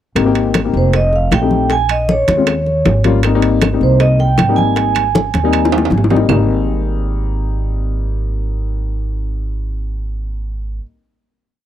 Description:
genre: Afro-Cuban jazz.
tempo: 157 BPM.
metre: 4/4.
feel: straight.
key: Ab major.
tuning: A4 = 440 Hz.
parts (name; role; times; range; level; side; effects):
warm upright piano; accompaniment; 0.2-10.8 s; G3 to Ab5; -18 LUFS; left 7 dB; none.
upright bass; bass; 0.2-10.8 s; F1 to Eb2; -17 LUFS; right 1 dB; none.
bongos; percussion; 0.2-6.4 s; none; -21 LUFS; left 5 dB; none.
claves; percussion; 0.2-6.4 s; none; -27 LUFS; right 12 dB; none.
congas; percussion; 0.2-6.4 s; none; -20 LUFS; equal; none.
timbales; percussion; 0.2-6.4 s; none; -21 LUFS; right 9 dB; none.
vibraphone with medium hard mallets; melody; 0.8-5.9 s; C5 to Ab5; -16 LUFS; right 4 dB; none.
room: little or no reverb.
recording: dry, close 1970s-style studio recording.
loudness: -13 LUFS.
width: side -11 dB against mid.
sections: 0.2-6.3 A section; 6.3-9.3 final chord.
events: drum fill 5.1-6.3; upright piano fill 5.7-6.3.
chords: 0.2 Abmaj7; 0.9 F7; 1.7 Bbm7; 2.5 Eb7; 3.2 Abmaj7.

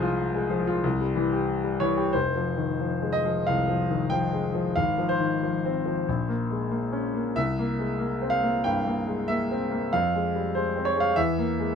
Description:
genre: classical, romantic character piece for solo piano.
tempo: 93 BPM.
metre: 4/4.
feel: rubato.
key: F minor.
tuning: A4 = 442 Hz.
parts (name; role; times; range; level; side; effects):
clear concert grand piano; solo; 0.0-11.8 s; F1 to C6; -24 LUFS; left 1 dB; none.
room: light reverb.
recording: minimal, uncompressed stereo recording.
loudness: -24 LUFS.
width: side -6 dB against mid.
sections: 0.0-2.1 A section; 2.1-11.8 B section.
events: none.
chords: 0.0 Fm/C; 0.8 C; 2.1 Fm; 4.8 Fm/Ab; 6.1 Bbm9; 7.4 C7; 9.9 Fm; 11.2 C7/E (rootless).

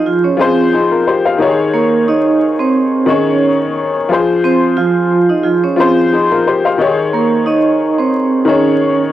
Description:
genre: hip hop.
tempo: 89 BPM.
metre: 4/4.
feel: swing 55% on 16ths.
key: unclear.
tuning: A4 = 440 Hz.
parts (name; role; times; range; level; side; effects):
vibraphone with medium hard mallets; melody; 0.0-9.0 s; F3 to Eb5; -13 LUFS; right 4 dB; high-pass filter, low-pass filter, tape echo.
warm upright piano; accompaniment; 0.0-9.1 s; Eb3 to F5; -13 LUFS; left 3 dB; cassette tape, high-pass filter, low-pass filter.
room: light reverb.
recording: home recording on cassette, vinyl crackle.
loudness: -10 LUFS.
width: side -13 dB against mid.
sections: 0.0-9.1 A section.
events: none.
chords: 0.0 Fm; 1.4 Eb7sus4; 4.1 Fm; 6.8 Eb7sus4.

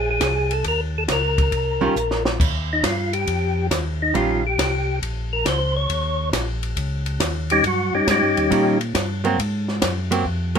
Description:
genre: soul jazz organ trio.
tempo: 138 BPM.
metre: 4/4.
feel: swing 68% on 8ths.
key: Eb mixolydian.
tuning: A4 = 437 Hz.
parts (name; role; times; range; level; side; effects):
percussive tonewheel organ; melody; 0.0-8.8 s; Gb3 to Db5; -20 LUFS; left 2 dB; overdrive, chorus vibrato, fast rotary speaker.
mellow tonewheel organ; bass; 0.0-10.6 s; Bb1 to Bb2; -24 LUFS; equal; overdrive, chorus vibrato, slow rotary speaker.
compact cocktail drum kit; drums; 0.2-10.6 s; crash cymbal, hi-hat, kick drum, ride cymbal, snare drum; -25 LUFS; equal; none.
archtop guitar, miked and amplified; accompaniment; 1.8-4.4, 8.5-10.6 s; Eb3 to F4; -20 LUFS; right 4 dB; none.
room: light reverb.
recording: minimal, uncompressed stereo recording.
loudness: -18 LUFS.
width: side -7 dB against mid.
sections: 0.0-2.4 A section; 2.4-10.6 B section.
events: drum fill 2.0-2.4; tonewheel organ solo 2.4-10.6.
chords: 0.0 Abadd9; 0.7 Eb7(no3); 2.4 Eb9; 9.4 Ab7(no3).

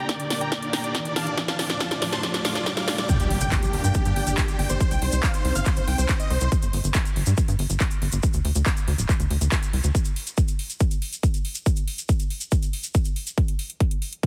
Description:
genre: uplifting trance.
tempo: 140 BPM.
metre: 4/4.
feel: straight.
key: G minor.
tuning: A4 = 440 Hz.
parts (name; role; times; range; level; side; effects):
big supersaw lead; melody; 0.0-6.5 s; G4 to D6; -32 LUFS; equal; sidechain pumping, low-pass filter, delay.
lush unison pad; sustained chords; 0.0-6.5 s; A3 to D5; -35 LUFS; equal; chorus, phaser, sidechain pumping.
riser and impact; sound effects; 0.0-4.8 s; none; -33 LUFS; equal; none.
big-room dance drum kit; drums; 0.1-14.3 s; handclaps, hi-hat, snare drum; -32 LUFS; equal; high-pass filter on snare, high-pass filter on hats.
electronic kick drum; drums; 0.1-14.3 s; none; -25 LUFS; equal; high-pass filter on kick.
cabasa; percussion; 3.1-13.4 s; none; -36 LUFS; equal; none.
tight sequencer bass; bass; 3.2-9.9 s; D1 to G2; -26 LUFS; equal; sidechain pumping.
room: light reverb.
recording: heavily compressed radio sound, multiband compression.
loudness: -24 LUFS.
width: mono.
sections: 0.0-3.1 A section; 3.1-14.3 B section.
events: build-up 0.0-3.1; drum fill 0.0-3.1; riser 0.0-3.1; impact 3.1-4.8; filter sweep on analog synth pad 3.1-6.5.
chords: 0.0 Gm; 1.4 Dm; 3.1 Gm; 4.8 Cmadd9; 6.5 N.C..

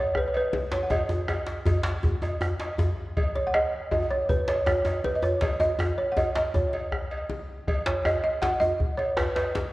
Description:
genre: west african traditional, West African drum ensemble.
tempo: 106 BPM (dotted quarters).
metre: 12/8.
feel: straight.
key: unclear.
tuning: A4 = 440 Hz.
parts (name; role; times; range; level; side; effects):
balafon; melody; 0.0-9.7 s; B4 to F#5; -26 LUFS; right 1 dB; none.
bombo; percussion; 0.1-9.6 s; none; -31 LUFS; equal; none.
djembe; percussion; 0.1-9.7 s; none; -34 LUFS; left 2 dB; none.
cowbell; percussion; 0.3-9.5 s; none; -36 LUFS; equal; none.
djembe; percussion; 0.7-9.7 s; none; -29 LUFS; equal; none.
room: wet scoring stage reverb, RT60 1.9 s.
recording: worn, warbling old tape, cassette tape, warbly pitch drift.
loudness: -24 LUFS.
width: side -18 dB against mid.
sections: 0.0-9.7 A section.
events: none.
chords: none.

